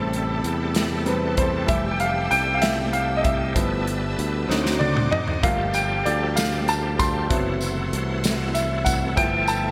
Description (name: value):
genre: slow gospel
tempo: 64 BPM (dotted quarters)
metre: 6/8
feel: straight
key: unclear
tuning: A4 = 443 Hz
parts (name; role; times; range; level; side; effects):
- clear grand piano; accompaniment; 0.0-9.7 s; E3 to C6; -26 LUFS; equal; none
- bright studio string section; sustained chords; 0.0-9.7 s; Eb4 to E6; -38 LUFS; equal; none
- bright tonewheel organ; sustained chords; 0.0-9.7 s; B#2 to A4; -31 LUFS; equal; slow rotary speaker, chorus vibrato
- modern bright fingered electric bass; bass; 0.0-9.7 s; F1 to E2; -29 LUFS; equal; none
- natural country drum kit; drums; 0.1-9.6 s; hi-hat, kick drum, snare drum, toms; -28 LUFS; equal; gated reverb
- tambourine; percussion; 5.7-9.7 s; none; -36 LUFS; equal; none
room: moderate lush hall reverb, RT60 1.9 s, small room ambience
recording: bright 1980s-style digital production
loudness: -23 LUFS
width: mono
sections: 0.0-9.7 A section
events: grand piano solo 0.0-9.7; drum fill 4.5-5.4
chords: 0.0 Am9; 1.7 Fmaj9; 3.6 G13; 4.5 D7b9; 5.4 Gm9; 7.3 F#m7b5; 9.2 G13